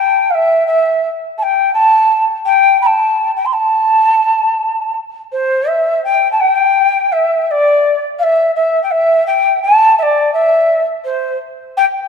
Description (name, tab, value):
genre	andean folk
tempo	84 BPM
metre	2/4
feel	straight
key	A minor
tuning	A4 = 440 Hz
part	mellow quena	solo	0.0-11.8 s	C5 to C6	-11 LUFS	left 1 dB	none
room	wet concert hall reverb, RT60 2.0 s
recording	none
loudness	-11 LUFS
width	side -6 dB against mid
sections	0.0-5.3 A section; 5.3-12.1 B section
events	none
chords	none